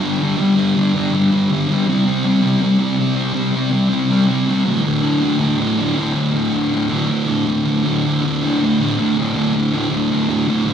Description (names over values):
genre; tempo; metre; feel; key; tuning
rock; 160 BPM; 4/4; straight; unclear; A4 = 440 Hz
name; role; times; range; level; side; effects
thick fuzz guitar; solo; 0.0-10.7 s; D2 to C4; -15 LUFS; equal; distortion, slapback echo
room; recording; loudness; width
moderate plate reverb, RT60 3.4 s; live gig heard through the venue's PA, club reverb; -15 LUFS; side -8 dB against mid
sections
0.0-10.7 A section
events
none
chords
0.0 G5; 1.9 C5; 4.7 D5